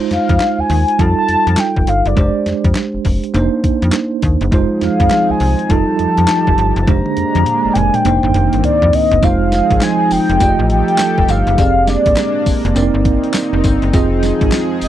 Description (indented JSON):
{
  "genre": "R&B, new jack swing",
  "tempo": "102 BPM",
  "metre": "4/4",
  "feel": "swing 62% on 16ths",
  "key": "F dorian",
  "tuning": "A4 = 442 Hz",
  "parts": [
    { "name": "bell-like tine electric piano", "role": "accompaniment", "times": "0.0-14.9 s", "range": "G3 to Eb5", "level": "-18 LUFS", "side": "right 5 dB", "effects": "medium stereo tremolo" },
    { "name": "mellow horn-like synth lead", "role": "melody", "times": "0.1-14.9 s", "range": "D5 to Bb5", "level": "-16 LUFS", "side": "left 1 dB", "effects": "chorus, slapback echo" },
    { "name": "slap-like FM bass", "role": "bass", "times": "0.1-14.9 s", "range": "F1 to F2", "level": "-16 LUFS", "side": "left 1 dB", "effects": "none" },
    { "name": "crisp 8-bit digital drum machine", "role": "drums", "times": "0.1-14.9 s", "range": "handclaps, hi-hat, kick drum, snare drum, tambourine, toms", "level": "-18 LUFS", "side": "left 1 dB", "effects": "none" },
    { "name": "chorused pulse-width pad", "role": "sustained chords", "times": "4.5-14.9 s", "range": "Eb3 to A4", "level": "-20 LUFS", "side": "equal", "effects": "none" }
  ],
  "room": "little or no reverb",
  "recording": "dry, close 1970s-style studio recording",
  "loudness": "-11 LUFS",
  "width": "side -12 dB against mid",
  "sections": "0.0-9.2 A section; 9.2-14.9 B section",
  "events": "drum fill 6.9-9.2",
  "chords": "0.0 Fm7; 1.0 F9; 2.2 Fm69; 3.3 Cm9/F; 4.5 Fm7; 5.7 F9; 6.9 Bb13/F; 8.1 Cm9/F; 9.2 Fm7; 10.4 F9; 11.6 Bb13/F; 12.8 Cm9/F; 13.9 Fm7",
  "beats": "0.40 0.99 1.58 | 2.17 2.76 3.35 3.93 | 4.52 5.11 5.70 6.29 | 6.88 7.46 8.05 8.64 | 9.23 9.82 10.40 10.99 | 11.58 12.17 12.76 13.35 | 13.93 14.52"
}